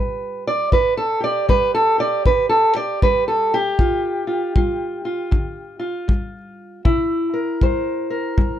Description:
acoustic country blues, solo or duo; 78 BPM; 4/4; swing 62% on 8ths; G mixolydian; A4 = 442 Hz
fingerpicked steel-string acoustic guitar; melody; 0.0-8.6 s; G2 to D5; -18 LUFS; right 1 dB
kick drum; drums; 0.7-8.6 s; -18 LUFS; equal
moderate booth ambience, RT60 0.2 s; -17 LUFS; side -10 dB against mid
0.0-8.6 A section
steel-string acoustic guitar solo 0.0-8.6
0.0 G7; 6.9 C7
| 0.73 1.50 2.27 3.03 | 3.80 4.56 5.33 6.09 | 6.86 7.62 8.39

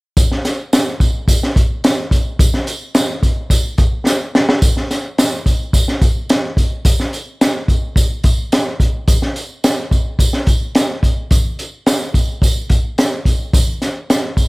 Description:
soul; 108 BPM; 4/4; straight
crunchy breakbeat drum kit; drums; 0.2-14.5 s; hi-hat, kick drum, snare drum; -13 LUFS; equal
tambourine; percussion; 0.2-14.5 s; -26 LUFS; right 2 dB
little or no reverb; -13 LUFS; side -25 dB against mid
0.2-4.6 A section; 4.6-14.5 B section
drum fill 4.1-4.6
| 0.16 0.72 1.28 1.83 | 2.39 2.95 3.51 4.06 | 4.62 5.18 5.74 6.29 | 6.85 7.41 7.96 8.52 | 9.08 9.64 10.19 10.75 | 11.31 11.86 12.42 12.98 | 13.54 14.09

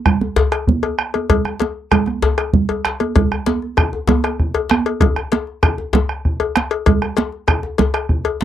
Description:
west african traditional, West African drum ensemble; 129 BPM (dotted quarters); 12/8; straight
bombo; percussion; 0.1-8.2 s; -18 LUFS; right 1 dB
congas; percussion; 0.1-7.9 s; -19 LUFS; right 6 dB
djembe; percussion; 0.2-8.4 s; -21 LUFS; left 2 dB
cowbell; percussion; 0.4-8.4 s; -21 LUFS; left 9 dB
light reverb; dry, close 1970s-style studio recording; -15 LUFS; side -11 dB against mid
0.0-3.2 A section; 3.2-8.4 B section
0.36 0.83 | 1.29 1.76 2.22 2.69 | 3.15 3.62 4.08 4.55 | 5.01 5.47 5.94 6.40 | 6.87 7.33 7.79 8.26

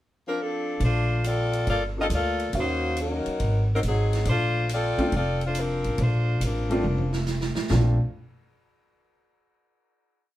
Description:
jazz, big band swing; 139 BPM; 4/4; swing 68% on 8ths; Bb major; A4 = 440 Hz
warm saxophone section; melody; 0.3-7.3 s; F3 to Eb5; -27 LUFS; left 2 dB
upright bass; bass; 0.8-8.0 s; F1 to Eb2; -25 LUFS; equal
swinging big-band drum kit; drums; 0.8-7.8 s; hi-hat, kick drum, ride cymbal, snare drum, toms; -34 LUFS; right 1 dB
warm baby grand piano; accompaniment; 2.0-8.0 s; A3 to F5; -28 LUFS; equal
moderate studio reverb, RT60 0.5 s; band playing live in one room; -22 LUFS; side -14 dB against mid
0.0-0.8 pickup bar; 0.8-7.7 A section; 7.7-9.4 final chord
drum fill 6.8-7.7
0.0 F6; 0.8 Bbmaj9; 1.7 Gm9; 2.5 Ebm7; 3.4 Ab7; 4.3 Bbmaj9
0.37 | 0.81 1.24 1.67 2.10 | 2.53 2.96 3.40 3.83 | 4.26 4.69 5.12 5.55 | 5.98 6.41 6.84 7.27 | 7.70

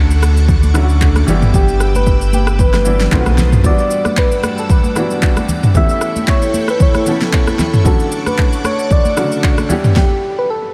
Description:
amapiano; 114 BPM; 4/4; swing 55% on 16ths; A4 = 439 Hz
warm baby grand piano; accompaniment; 0.0-10.0 s; C#3 to A4; -23 LUFS; equal
string machine, full ensemble; sustained chords; 0.0-10.0 s; G3 to E6; -26 LUFS; equal; ensemble chorus
saturated sub bass; bass; 0.0-3.6 s; G1 to D2; -15 LUFS; equal
deep house drum kit; drums; 0.1-10.1 s; handclaps, kick drum, rim click, shaker, snare drum, toms; -17 LUFS; equal
congas; percussion; 0.2-9.8 s; -25 LUFS; equal
soft struck synth lead; melody; 1.6-10.7 s; G4 to E5; -22 LUFS; equal; chorus, diffuse ambient delay
light reverb, digital ambience; faint mains hum; -13 LUFS; mono
0.0-10.7 A section
stop 10.0-10.7
0.0 Dmaj7; 1.3 G6; 3.1 B7b9; 3.6 Em9; 5.8 A9/E; 7.9 Dmaj7; 9.7 G6
0.49 1.01 | 1.54 2.06 2.59 3.12 | 3.64 4.17 4.70 5.22 | 5.75 6.28 6.80 7.33 | 7.86 8.38 8.91 9.43 | 9.96 10.49

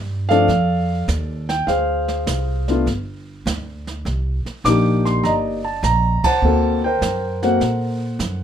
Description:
jazz piano trio; 101 BPM; 4/4; swing 68% on 8ths; A4 = 440 Hz
upright bass; bass; 0.0-8.4 s; G1 to Bb2; -22 LUFS; right 1 dB
warm concert grand piano; melody; 0.3-8.4 s; F3 to D6; -18 LUFS; left 1 dB
jazz brush drum kit; drums; 0.3-8.4 s; brushed snare drum, hi-hat, kick drum, ride cymbal, snare drum; -28 LUFS; right 4 dB
light reverb; minimal, uncompressed stereo recording; -17 LUFS; side -9 dB against mid
0.0-8.4 A section
band accent 6.1
0.0 Bbmaj7 (rootless); 1.7 Dm7b5; 2.9 G5; 4.1 Cm9; 6.4 D7b13
0.50 1.09 | 1.68 2.28 2.87 3.46 | 4.06 4.65 5.24 5.84 | 6.43 7.02 7.61 8.20

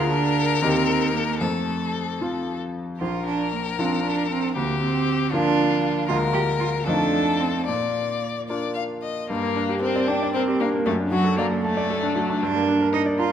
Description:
quick classical-period movement for piano trio; 77 BPM (dotted quarters); 6/8; straight; Bb major, G minor from 9.3 s; A4 = 440 Hz
clear violin; melody; 0.0-13.1 s; A3 to F5; -26 LUFS; left 7 dB
clear cello; second line; 0.0-13.3 s; F#3 to G4; -25 LUFS; right 6 dB
bright grand piano; accompaniment; 0.0-13.3 s; Bb1 to Bb5; -24 LUFS; left 1 dB
wet recital hall reverb, RT60 1.4 s; -21 LUFS; side -9 dB against mid
0.0-9.3 A section; 9.3-13.3 B section
0.0 Bb7/D; 0.6 Eb; 1.4 F; 3.0 Bb; 4.6 Bb/D; 6.1 Bb7/D; 6.9 F7; 7.7 Bb; 9.3 Gm; 10.9 D/F#; 12.4 Gm
0.62 | 1.41 2.20 | 3.00 3.78 | 4.56 5.33 | 6.09 6.87 | 7.67 8.48 | 9.29 10.08 | 10.86 11.63 | 12.41 13.18

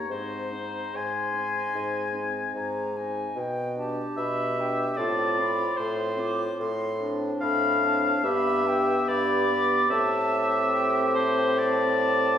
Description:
classical, slow romantic movement for wind quintet; 73 BPM; 4/4; rubato; Ab major; A4 = 440 Hz
silver concert flute; melody; 0.0-12.4 s; G5 to D6; -33 LUFS; equal
clear oboe; second line; 0.0-12.4 s; C5 to Ab5; -27 LUFS; left 2 dB
clear clarinet; accompaniment; 0.0-12.4 s; D4 to G4; -32 LUFS; right 2 dB
warm French horn; accompaniment; 0.0-12.4 s; B3 to D4; -32 LUFS; equal
clear bassoon; bass; 0.1-12.4 s; G2 to B2; -29 LUFS; left 1 dB
wet scoring stage reverb, RT60 1.5 s; heard from further back in the room, vinyl crackle, small room ambience; -23 LUFS; side -9 dB against mid
0.0-12.4 A section
0.1 Ab; 3.4 G/B; 5.0 F/A; 6.6 Dm7/A; 8.2 G; 9.9 Am7
| 0.10 0.96 1.76 2.56 | 3.37 4.18 4.99 5.79 | 6.61 7.42 8.24 9.08 | 9.91 10.74 11.57

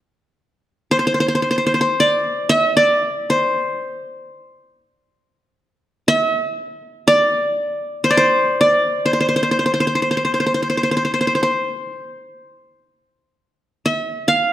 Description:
Turkish makam ensemble; free time; A4 = 440 Hz
qanun; solo; 0.9-14.5 s; C5 to F5; -16 LUFS; equal
moderate recital hall reverb, RT60 1.8 s; close, detailed microphones; -16 LUFS; side -12 dB against mid
0.1-14.5 A section
free time

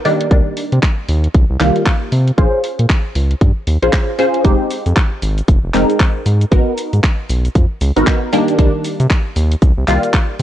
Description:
deep house; 116 BPM; 4/4; swing 60% on 16ths; A4 = 439 Hz
filtered dub chord stab; stabs; 0.0-10.4 s; Eb3 to C5; -16 LUFS; equal; phaser, ensemble chorus, sidechain pumping, analog delay
house drum kit; drums; 0.1-10.4 s; handclaps, hi-hat, shaker; -23 LUFS; equal; vintage 12-bit sampler grit
round analog bass; bass; 0.3-10.4 s; F1 to C3; -14 LUFS; equal; sidechain pumping
electronic kick drum; drums; 0.3-10.3 s; -13 LUFS; equal; vintage 12-bit sampler grit
digital ambience; cassette tape; -12 LUFS; side -12 dB against mid
0.0-10.4 A section
0.1 Cm7; 2.4 Bbm7; 4.4 Fm7; 6.3 Abm7; 8.3 Cm7
| 0.31 0.83 1.34 1.86 | 2.38 2.90 3.41 3.93 | 4.45 4.96 5.48 6.00 | 6.52 7.03 7.55 8.07 | 8.59 9.10 9.62 10.14

